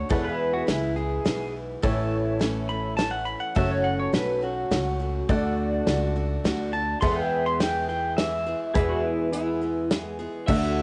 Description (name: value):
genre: honky-tonk and classic country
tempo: 104 BPM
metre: 3/4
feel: straight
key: unclear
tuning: A4 = 440 Hz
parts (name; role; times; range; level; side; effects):
- pedal steel guitar; second line; 0.0-9.9 s; E4 to C6; -30 LUFS; equal; none
- honky-tonk upright piano; accompaniment; 0.0-10.8 s; E4 to F#5; -36 LUFS; equal; none
- picked steel-string acoustic guitar; accompaniment; 0.0-10.8 s; E2 to G#4; -34 LUFS; equal; none
- pedal steel guitar; sustained chords; 0.0-10.5 s; G#4 to F#5; -36 LUFS; equal; lush chorus
- upright bass; bass; 0.1-10.8 s; F#1 to E2; -32 LUFS; equal; none
- natural country drum kit; drums; 0.1-10.6 s; crash cymbal, hi-hat, kick drum, ride cymbal, snare drum; -29 LUFS; equal; none
- electric guitar through a small old amp; melody; 10.5-10.8 s; E5; -31 LUFS; equal; cassette tape
room: moderate studio reverb, RT60 0.5 s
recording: home recording on cassette, nothing above 10.4 kHz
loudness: -26 LUFS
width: mono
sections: 0.0-8.8 A section; 8.8-10.5 B section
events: pedal steel guitar solo 0.0-8.8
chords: 0.1 E; 1.8 A; 3.6 F#m; 5.3 D; 7.0 E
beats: | 0.10 0.68 1.26 | 1.83 2.41 2.99 | 3.56 4.14 4.72 | 5.29 5.87 6.45 | 7.02 7.60 8.18 | 8.75 9.33 9.91 | 10.48